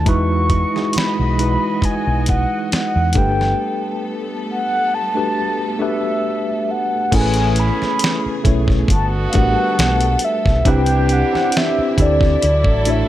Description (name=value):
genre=R&B, neo-soul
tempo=68 BPM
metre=4/4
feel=swing 53% on 16ths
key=A major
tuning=A4 = 440 Hz
part: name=mellow horn-like synth lead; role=melody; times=0.0-13.1 s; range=D5 to C#6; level=-20 LUFS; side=equal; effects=chorus
part: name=mellow tine electric piano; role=accompaniment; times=0.0-13.1 s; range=G#3 to C#5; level=-21 LUFS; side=left 1 dB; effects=overdrive, medium stereo tremolo
part: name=fingered electric bass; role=bass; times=0.0-13.0 s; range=G1 to E2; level=-18 LUFS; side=equal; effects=none
part: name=warm studio string section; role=sustained chords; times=0.1-13.1 s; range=C#3 to D#5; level=-29 LUFS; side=left 2 dB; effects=none
part: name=dusty soul sampler-style drum kit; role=drums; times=0.1-13.1 s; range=crash cymbal, hi-hat, kick drum, snare drum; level=-19 LUFS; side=equal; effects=none
part: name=warm horn section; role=stabs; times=7.1-13.1 s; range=D3 to A4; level=-26 LUFS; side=right 3 dB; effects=none
room=digital ambience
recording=none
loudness=-15 LUFS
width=side -13 dB against mid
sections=0.0-7.1 A section; 7.1-13.1 B section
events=break 3.6-7.1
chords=0.1 Emaj9; 3.2 Gmaj9; 7.1 Amaj9; 8.9 Gmaj9; 10.7 Cmaj9; 12.4 Dmaj9